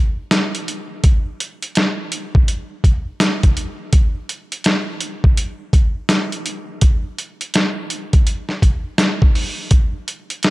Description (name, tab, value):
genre	hip hop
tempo	83 BPM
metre	4/4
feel	swing 63% on 16ths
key	none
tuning	none
part	boom bap sampler-style drum kit	drums	0.3-10.5 s	hi-hat, kick drum, snare drum	-15 LUFS	equal	none
room	light reverb, digital ambience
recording	none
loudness	-16 LUFS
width	side -20 dB against mid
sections	0.0-10.5 A section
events	none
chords	none